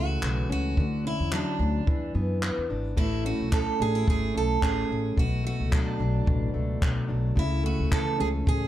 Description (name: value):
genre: acoustic pop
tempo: 109 BPM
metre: 4/4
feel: swing 55% on 16ths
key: A major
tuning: A4 = 440 Hz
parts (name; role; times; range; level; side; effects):
- picked steel-string acoustic guitar; melody; 0.0-8.7 s; D4 to A4; -31 LUFS; right 3 dB; digital delay
- fingerpicked plugged-in steel-string acoustic guitar; accompaniment; 0.0-8.7 s; B2 to E4; -30 LUFS; equal; none
- upright bass; bass; 0.0-8.7 s; G#1 to F#2; -29 LUFS; equal; none
- compact cocktail drum kit; drums; 0.2-8.6 s; crash cymbal, handclaps, kick drum; -27 LUFS; equal; none
room: light reverb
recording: dark, warm production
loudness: -24 LUFS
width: side -13 dB against mid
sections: 0.0-3.0 A section; 3.0-8.7 B section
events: none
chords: 0.0 A; 0.8 Dmaj7; 1.9 E7; 3.0 Amaj7; 5.2 Bm7; 7.4 Amaj7/C#